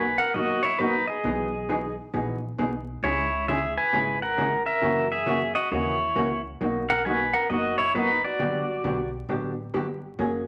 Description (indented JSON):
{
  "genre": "country, western swing",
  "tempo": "134 BPM",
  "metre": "4/4",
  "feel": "swing 65% on 8ths",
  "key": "B major",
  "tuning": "A4 = 441 Hz",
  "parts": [
    { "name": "pedal steel guitar", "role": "melody", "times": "0.0-9.1 s", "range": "D#4 to G#5", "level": "-26 LUFS", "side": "equal", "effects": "none" },
    { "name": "upright bass", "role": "bass", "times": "0.0-10.5 s", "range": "F#1 to F#2", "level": "-40 LUFS", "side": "equal", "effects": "none" },
    { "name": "hollow-body jazz guitar", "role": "accompaniment", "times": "0.3-10.4 s", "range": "B2 to G#4", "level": "-30 LUFS", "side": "equal", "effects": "none" }
  ],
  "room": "wet large studio reverb, RT60 0.9 s",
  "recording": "vinyl crackle",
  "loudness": "-26 LUFS",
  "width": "mono",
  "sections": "0.0-10.5 A section",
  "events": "none",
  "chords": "0.0 Bmaj7; 1.2 Emaj7/B; 3.0 C#m; 4.8 F#7; 6.6 Bmaj7; 8.4 Gmaj7"
}